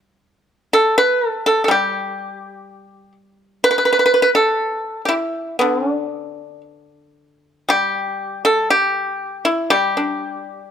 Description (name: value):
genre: chinese traditional, Chinese solo plucked strings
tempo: 57-63 BPM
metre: 2/4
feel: rubato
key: unclear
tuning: A4 = 440 Hz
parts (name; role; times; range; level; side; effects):
- pipa; solo; 0.0-10.7 s; D3 to B4; -16 LUFS; equal; none
room: light reverb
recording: close, detailed microphones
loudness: -16 LUFS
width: side -8 dB against mid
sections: 0.0-7.7 A section; 7.7-10.7 B section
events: none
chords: none